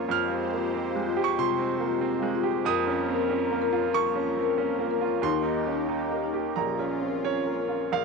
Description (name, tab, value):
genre	neoclassical piano and strings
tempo	92 BPM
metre	4/4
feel	uneven beats, rubato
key	Bb dorian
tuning	A4 = 439 Hz
part	clear baby grand piano	accompaniment	0.0-8.0 s	Bb1 to F6	-27 LUFS	right 9 dB	none
part	warm analog pad	sustained chords	0.0-8.0 s	Ab3 to Db5	-34 LUFS	left 2 dB	chorus
part	marimba with soft mallets	arpeggios	0.0-8.0 s	Eb4 to Bb5	-28 LUFS	left 13 dB	slapback echo
room	moderate echo chamber reverb, RT60 2.6 s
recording	1960s-style stereo with parts hard left and right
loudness	-24 LUFS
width	side -4 dB against mid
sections	0.0-7.9 A section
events	none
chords	0.1 Fmadd9; 2.7 Bbm/F; 5.2 Eb; 6.6 Bbm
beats	| 0.11 0.75 1.39 2.03 | 2.67 3.30 3.94 4.58 | 5.23 5.89 6.56 7.24 | 7.92